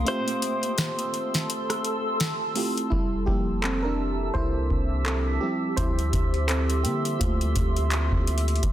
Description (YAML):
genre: contemporary R&B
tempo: 84 BPM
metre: 4/4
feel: swing 58% on 16ths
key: F major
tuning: A4 = 440 Hz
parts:
  - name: mellow FM electric piano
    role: accompaniment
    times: 0.0-8.7 s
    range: F3 to E5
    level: -29 LUFS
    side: right 1 dB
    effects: chorus
  - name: granular cloud pad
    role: sustained chords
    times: 0.0-8.7 s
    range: G4 to E6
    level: -31 LUFS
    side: right 1 dB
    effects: built-in reverb
  - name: soft 808-style bass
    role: bass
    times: 0.0-8.7 s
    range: F1 to D3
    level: -26 LUFS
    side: equal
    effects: none
  - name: direct-recorded clean electric guitar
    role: melody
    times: 0.1-2.2 s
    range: C5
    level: -30 LUFS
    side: left 1 dB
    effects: tape echo
  - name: booming analog drum machine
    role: drums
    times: 0.1-8.7 s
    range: handclaps, hi-hat, kick drum, rim click, snare drum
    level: -28 LUFS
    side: equal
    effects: soft clipping on snare
room: digital ambience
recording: dense, heavily limited modern master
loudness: -23 LUFS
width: side -12 dB against mid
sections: 0.0-2.9 A section; 2.9-8.7 B section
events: break 0.1-2.9; FM electric piano solo 2.9-8.7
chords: 0.1 Fmaj7; 2.9 Fmaj9; 5.4 Dm11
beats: | 0.06 0.77 1.49 2.20 | 2.92 3.63 4.35 5.06 | 5.77 6.49 7.20 7.92 | 8.63